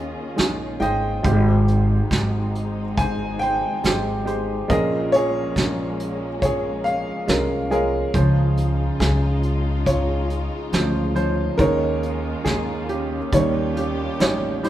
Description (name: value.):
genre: acoustic folk-pop ballad.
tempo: 69 BPM.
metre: 4/4.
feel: straight.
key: Ab major.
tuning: A4 = 440 Hz.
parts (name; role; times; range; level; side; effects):
warm grand piano; melody; 0.0-14.7 s; Ab1 to Ab5; -22 LUFS; right 1 dB; none.
dark studio string section; sustained chords; 0.0-14.7 s; Db3 to Ab4; -31 LUFS; left 2 dB; none.
upright bass; bass; 0.0-14.7 s; Ab1 to Eb2; -23 LUFS; equal; none.
soft brush drum kit; drums; 0.4-14.7 s; hi-hat, kick drum, snare drum; -24 LUFS; right 1 dB; none.
room: light reverb.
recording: band playing live in one room.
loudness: -19 LUFS.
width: side -13 dB against mid.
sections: 0.0-14.7 A section.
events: none.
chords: 0.0 Eb7sus4; 1.2 Abmaj7; 4.7 Bbm7; 8.1 Dbmaj7; 11.6 Eb7sus4; 13.3 Eb7.